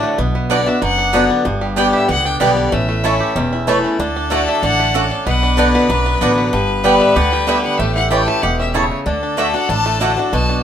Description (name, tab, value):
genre	bluegrass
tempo	189 BPM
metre	4/4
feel	straight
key	D major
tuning	A4 = 440 Hz
part	bluegrass banjo	melody	0.0-10.6 s	G3 to G4	-23 LUFS	right 4 dB	none
part	clear fiddle	melody	0.0-10.6 s	C#5 to A5	-21 LUFS	left 2 dB	none
part	picked swing-style acoustic guitar	accompaniment	0.0-10.6 s	E2 to G4	-18 LUFS	left 2 dB	none
part	upright bass	bass	0.2-10.6 s	E1 to D2	-21 LUFS	equal	none
part	mandolin	stabs	0.5-10.1 s	A3 to A5	-20 LUFS	right 7 dB	none
part	clear fiddle	second line	4.0-10.6 s	F#4 to B4	-22 LUFS	left 4 dB	none
room	moderate studio reverb, RT60 0.8 s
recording	minimal, uncompressed stereo recording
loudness	-13 LUFS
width	side -9 dB against mid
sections	0.0-10.6 A section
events	none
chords	0.2 Bm; 1.5 G; 2.7 A; 4.0 D; 5.3 Bm; 6.5 G; 7.8 A; 9.1 D